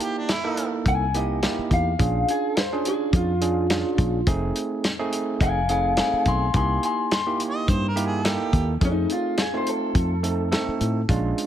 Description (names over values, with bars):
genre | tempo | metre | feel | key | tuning
straight-eighth soul blues | 106 BPM | 4/4 | swing 55% on 16ths | unclear | A4 = 445 Hz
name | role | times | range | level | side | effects
mellow harmonica | second line | 0.0-0.7, 7.5-8.7 s | D4 to D#5 | -30 LUFS | right 3 dB | overdrive, slapback echo
overdriven tine electric piano | accompaniment | 0.0-11.5 s | Ab3 to A4 | -27 LUFS | right 4 dB | none
warm soul drum kit | drums | 0.0-11.5 s | hi-hat, kick drum, snare drum | -25 LUFS | equal | none
electric guitar through a small old amp | melody | 0.9-11.1 s | Eb4 to C6 | -26 LUFS | left 2 dB | spring reverb
fingered electric bass | bass | 0.9-11.3 s | F1 to A2 | -24 LUFS | equal | none
room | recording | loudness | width
little or no reverb | none | -21 LUFS | side -10 dB against mid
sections
0.0-8.8 A section; 8.8-11.5 B section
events
clean electric guitar solo 8.8-11.5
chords
0.0 C7#9; 2.0 Bb7#9; 4.3 F7#9; 6.5 C7#9; 8.8 F7#9